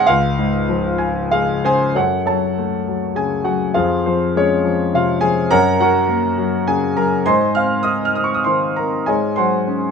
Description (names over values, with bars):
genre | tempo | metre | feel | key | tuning
classical, lyrical solo piano | 92-106 BPM | 3/4 | rubato | Db major | A4 = 442 Hz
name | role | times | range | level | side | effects
clear concert grand piano | solo | 0.0-9.9 s | Db2 to F6 | -15 LUFS | left 1 dB | none
room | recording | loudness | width
moderate studio reverb, RT60 0.6 s | minimal, uncompressed stereo recording | -15 LUFS | side -6 dB against mid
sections
0.0-1.9 A section; 1.9-9.9 B section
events
grand piano fill 0.7-1.9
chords
0.1 Db; 1.9 Gbm; 3.7 Dbmaj7/F; 5.5 Gb; 7.2 Ab; 9.1 Ab7sus4